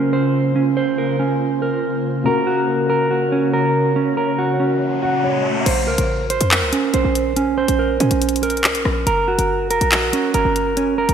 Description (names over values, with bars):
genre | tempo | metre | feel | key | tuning
hip hop, drill | 141 BPM | 4/4 | half-time | Bb minor | A4 = 440 Hz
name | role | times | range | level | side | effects
dark baby grand piano | accompaniment | 0.0-5.7 s | Db3 to Gb5 | -23 LUFS | left 4 dB | low-pass filter
ethereal airy pad | sustained chords | 0.0-5.6 s | Db3 to Db5 | -25 LUFS | left 2 dB | ensemble chorus, built-in reverb
mellow electric guitar | arpeggios | 0.0-11.1 s | Db4 to C5 | -18 LUFS | right 4 dB | low-pass filter, ping-pong delay
riser | sound effects | 4.6-5.7 s | none | -26 LUFS | left 2 dB | none
short 808-style bass | bass | 5.7-11.1 s | F1 to Bb2 | -22 LUFS | left 1 dB | none
drill drum kit | drums | 5.7-11.1 s | crash cymbal, handclaps, hi-hat, rim click | -20 LUFS | left 1 dB | overdrive
room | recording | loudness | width
wet lush hall reverb, RT60 2.1 s | bright 1980s-style digital production | -16 LUFS | side -8 dB against mid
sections
0.0-5.7 A section; 5.7-11.1 B section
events
riser 4.6-5.7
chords
0.0 Bbmadd9; 2.3 Gb; 5.7 Bbmadd9; 9.1 Gb